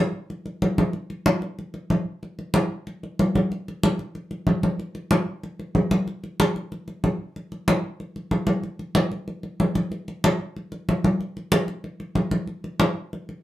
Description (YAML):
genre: latin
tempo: 187 BPM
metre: 4/4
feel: straight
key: none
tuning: none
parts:
  - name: congas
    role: percussion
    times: 0.3-13.4 s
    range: none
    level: -22 LUFS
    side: equal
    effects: none
room: wet studio ambience, RT60 0.5 s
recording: band playing live in one room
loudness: -22 LUFS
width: side -14 dB against mid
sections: 0.0-8.6 A section; 8.6-13.4 B section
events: none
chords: none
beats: 0.30 0.62 | 0.94 1.26 1.58 1.91 | 2.23 2.55 2.87 3.19 | 3.51 3.83 4.15 4.47 | 4.79 5.12 5.44 5.76 | 6.08 6.40 6.72 7.04 | 7.36 7.68 8.00 8.32 | 8.64 8.96 9.28 9.60 | 9.92 10.24 10.56 10.88 | 11.20 11.52 11.84 12.16 | 12.48 12.80 13.12